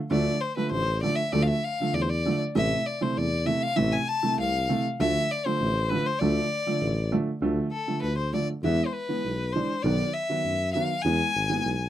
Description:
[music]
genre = klezmer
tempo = 99 BPM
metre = 2/4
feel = straight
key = D dorian sharp4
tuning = A4 = 440 Hz
[part]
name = clear violin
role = melody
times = 0.1-11.9 s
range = A4 to A5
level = -28 LUFS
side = left 3 dB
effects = none
[part]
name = dark upright piano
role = accompaniment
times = 0.1-11.7 s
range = C3 to D4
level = -28 LUFS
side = right 3 dB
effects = none
[part]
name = dark tuba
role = bass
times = 0.1-11.9 s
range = G#1 to F#2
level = -28 LUFS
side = left 1 dB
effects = none
[sound]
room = light reverb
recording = dry, close 1970s-style studio recording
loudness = -24 LUFS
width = side -12 dB against mid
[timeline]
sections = 0.0-7.4 A section; 7.4-11.9 B section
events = speeding up 0.0-11.9; violin solo 7.4-11.9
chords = 0.0 Dm; 2.6 Am; 5.0 Dm; 8.6 E; 9.8 B; 11.0 E

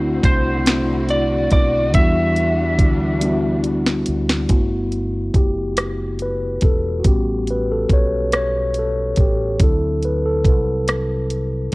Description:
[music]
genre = slow six-eight R&B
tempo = 47 BPM (dotted quarters)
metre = 6/8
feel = straight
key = unclear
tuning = A4 = 440 Hz
[part]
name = mellow tine electric piano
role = accompaniment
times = 0.0-11.7 s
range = F#3 to C#5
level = -21 LUFS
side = left 1 dB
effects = medium stereo tremolo, cassette tape
[part]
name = warm studio string section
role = sustained chords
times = 0.0-4.5 s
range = D3 to F#4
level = -29 LUFS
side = equal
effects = cassette tape
[part]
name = deep dub fingered electric bass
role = bass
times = 0.0-11.7 s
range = E1 to E2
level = -23 LUFS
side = equal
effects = none
[part]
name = smooth R&B drum kit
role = drums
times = 0.2-11.7 s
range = hi-hat, kick drum, rim click, snare drum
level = -16 LUFS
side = equal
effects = cassette tape
[part]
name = lightly driven lead guitar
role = melody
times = 0.3-3.6 s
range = C5 to E5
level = -21 LUFS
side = equal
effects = none
[sound]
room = digital ambience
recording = home recording on cassette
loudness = -16 LUFS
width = side -23 dB against mid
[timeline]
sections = 0.0-4.5 A section; 4.5-11.7 B section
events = drum fill 3.2-4.5; tine electric piano solo 4.5-11.7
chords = 0.0 D9; 1.9 Em9; 4.5 Gmaj13; 7.0 A13; 9.6 D9

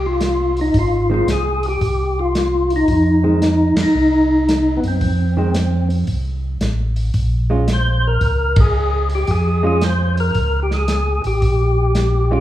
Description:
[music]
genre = soul jazz organ trio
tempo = 112 BPM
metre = 4/4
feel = swing 66% on 8ths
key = F minor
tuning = A4 = 440 Hz
[part]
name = percussive tonewheel organ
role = melody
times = 0.0-12.4 s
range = B3 to C5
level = -18 LUFS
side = left 1 dB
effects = slow rotary speaker, overdrive, chorus vibrato
[part]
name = mellow tonewheel organ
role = bass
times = 0.0-12.4 s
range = Ab1 to Gb2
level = -18 LUFS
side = equal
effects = overdrive, chorus vibrato, slow rotary speaker
[part]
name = warm soul drum kit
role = drums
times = 0.2-12.1 s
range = hi-hat, kick drum, ride cymbal, snare drum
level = -21 LUFS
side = equal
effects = none
[part]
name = hollow-body jazz guitar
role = accompaniment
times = 1.1-12.4 s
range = Eb3 to F4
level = -23 LUFS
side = right 3 dB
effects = none
[sound]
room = moderate recital hall reverb, RT60 1.5 s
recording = recorded in a church or concert hall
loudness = -15 LUFS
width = side -13 dB against mid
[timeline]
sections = 0.0-12.4 A section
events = band accent 3.7, 8.5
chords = 0.0 Fm7; 7.2 Bbm7

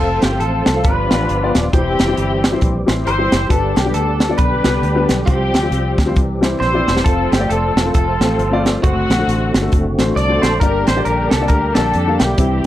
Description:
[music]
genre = uptempo gospel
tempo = 135 BPM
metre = 4/4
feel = swing 60% on 8ths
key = unclear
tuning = A4 = 440 Hz
[part]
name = clean electric guitar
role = melody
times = 0.0-12.7 s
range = F#4 to D5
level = -22 LUFS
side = right 2 dB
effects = none
[part]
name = muted studio string section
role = melody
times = 0.0-12.7 s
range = A3 to D5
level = -22 LUFS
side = left 3 dB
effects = none
[part]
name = dark baby grand piano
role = accompaniment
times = 0.0-12.7 s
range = G2 to G5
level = -22 LUFS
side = left 4 dB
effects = none
[part]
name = percussive tonewheel organ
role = sustained chords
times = 0.0-12.7 s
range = D3 to A4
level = -24 LUFS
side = right 1 dB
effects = slow rotary speaker, overdrive, chorus vibrato
[part]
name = fingered electric bass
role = bass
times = 0.0-12.6 s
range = Eb1 to F2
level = -20 LUFS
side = equal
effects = none
[part]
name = crisp fusion drum kit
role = drums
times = 0.2-12.5 s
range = hi-hat, kick drum, snare drum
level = -17 LUFS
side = right 1 dB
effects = none
[sound]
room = studio reverb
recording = dry, close 1970s-style studio recording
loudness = -13 LUFS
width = side -13 dB against mid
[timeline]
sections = 0.0-12.7 A section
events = drum fill 6.6-7.1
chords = 0.0 F; 0.8 G7; 1.7 C/E; 3.5 G; 5.3 Csus4; 6.2 C; 7.1 F; 8.8 D7/F#; 10.6 Gm

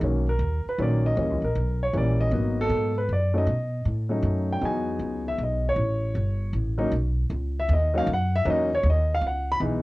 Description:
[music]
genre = jazz piano trio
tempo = 156 BPM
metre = 3/4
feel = swing 66% on 8ths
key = B major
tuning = A4 = 439 Hz
[part]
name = warm baby grand piano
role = melody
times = 0.0-9.8 s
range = D#3 to B5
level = -25 LUFS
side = equal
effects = none
[part]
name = upright bass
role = bass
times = 0.0-9.8 s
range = G1 to B2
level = -25 LUFS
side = equal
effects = none
[sound]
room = light reverb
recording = home recording on cassette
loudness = -22 LUFS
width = side -19 dB against mid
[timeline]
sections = 0.0-9.2 A section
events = grand piano solo 0.0-9.8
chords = 0.0 Bmaj7; 1.2 D#7b9; 2.3 G#m9; 3.5 B7; 4.6 Emaj9; 5.8 A7; 6.9 B; 9.2 C#m7

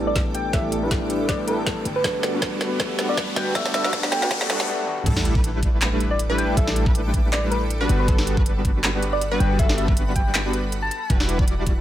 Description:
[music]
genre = future bass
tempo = 159 BPM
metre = 4/4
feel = swing 55% on 16ths, half-time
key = unclear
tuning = A4 = 444 Hz
[part]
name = overdriven tine electric piano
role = accompaniment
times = 0.0-5.1 s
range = E3 to A4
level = -30 LUFS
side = left 2 dB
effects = sidechain pumping, dub echo
[part]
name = shimmering ambient pad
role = sustained chords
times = 0.0-11.8 s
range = G3 to D6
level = -37 LUFS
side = right 2 dB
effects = chorus, built-in reverb, sidechain pumping
[part]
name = soft supersaw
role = riff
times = 0.0-11.8 s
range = G3 to D5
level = -26 LUFS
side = equal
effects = cassette tape, sidechain pumping, low-pass filter
[part]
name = warm 808-style bass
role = bass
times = 0.0-11.8 s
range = E1 to A1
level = -25 LUFS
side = equal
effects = tube saturation, sidechain pumping
[part]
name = riser, swell and sub drop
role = sound effects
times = 0.8-6.6 s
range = none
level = -32 LUFS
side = equal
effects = none
[part]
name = soft struck synth lead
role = melody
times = 0.1-11.1 s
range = B4 to A5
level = -28 LUFS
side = equal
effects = chorus, phaser, sidechain pumping, dub echo
[part]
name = electronic kick drum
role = drums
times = 0.2-11.7 s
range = none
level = -22 LUFS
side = equal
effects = none
[part]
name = trap drum kit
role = drums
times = 0.2-11.7 s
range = crash cymbal, handclaps, hi-hat, snare drum, toms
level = -26 LUFS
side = equal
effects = none
[part]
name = wide unison pluck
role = arpeggios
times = 5.1-11.8 s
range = A4 to D5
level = -32 LUFS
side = right 1 dB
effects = cassette tape, sidechain pumping
[sound]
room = light reverb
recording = high-pass filter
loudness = -19 LUFS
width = side -12 dB against mid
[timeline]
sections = 0.0-5.1 A section; 5.1-11.8 B section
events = build-up 0.0-5.1; drum fill 0.0-4.7, 4.7-5.1; filter sweep on supersaw synth 0.0-5.1; filter sweep 0.0-5.1; riser 0.8-4.7; swell 4.3-5.1; break 4.7-5.1; drop 5.1-11.8; impact 5.1-6.6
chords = 0.0 A7sus4; 1.9 Gmaj9; 5.1 A7sus4; 7.9 Gmaj9; 11.1 Em9

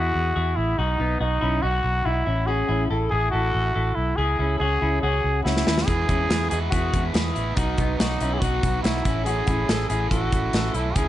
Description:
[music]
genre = jangly indie pop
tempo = 142 BPM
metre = 4/4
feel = straight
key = unclear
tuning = A4 = 440 Hz
[part]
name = growling trumpet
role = melody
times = 0.0-11.1 s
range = D#4 to G#4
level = -26 LUFS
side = equal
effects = none
[part]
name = electric guitar through a small old amp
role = arpeggios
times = 0.0-11.1 s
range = B3 to A4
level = -29 LUFS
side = left 3 dB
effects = phaser
[part]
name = vintage muted fingered electric bass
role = bass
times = 0.0-11.1 s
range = A1 to E2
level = -25 LUFS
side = equal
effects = none
[part]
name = big rock drum kit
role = drums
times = 5.5-11.1 s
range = hi-hat, kick drum, snare drum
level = -25 LUFS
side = equal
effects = none
[part]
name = crunchy overdriven guitar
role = accompaniment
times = 5.9-11.1 s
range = E2 to F#4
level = -30 LUFS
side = right 6 dB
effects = none
[sound]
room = light reverb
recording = nothing above 10.3 kHz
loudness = -20 LUFS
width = side -13 dB against mid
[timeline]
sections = 0.0-11.1 A section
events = drum fill 5.5-5.9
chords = 0.0 E; 0.8 B; 2.3 A; 4.2 C#m; 5.9 E; 7.6 B; 9.1 A

